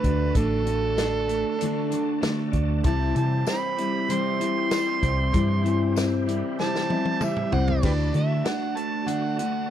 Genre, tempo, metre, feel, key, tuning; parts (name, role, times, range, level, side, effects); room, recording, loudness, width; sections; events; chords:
folk rock and heartland rock; 96 BPM; 4/4; straight; D mixolydian; A4 = 443 Hz
overdriven harmonica; melody; 0.0-9.7 s; G4 to C6; -28 LUFS; right 4 dB
picked steel-string acoustic guitar; accompaniment; 0.0-9.7 s; C3 to F#4; -28 LUFS; left 6 dB
bright tonewheel organ; sustained chords; 0.0-9.7 s; E4 to A5; -39 LUFS; equal; chorus vibrato, fast rotary speaker
electric guitar through a small old amp; riff; 0.0-9.7 s; C3 to D4; -29 LUFS; right 3 dB
hollow-body short-scale fingered electric bass; bass; 0.0-8.4 s; A1 to D3; -25 LUFS; equal
vintage drum kit; drums; 0.0-9.5 s; crash cymbal, hi-hat, kick drum, snare drum, toms; -28 LUFS; equal
tambourine; percussion; 3.5-7.4 s; -42 LUFS; left 17 dB
little or no reverb; dry, close 1970s-style studio recording; -22 LUFS; side -10 dB against mid
0.0-7.8 A section; 7.8-9.7 B section
harmonica solo 0.0-7.8; drum fill 6.6-7.8
0.0 D; 2.9 C; 7.8 D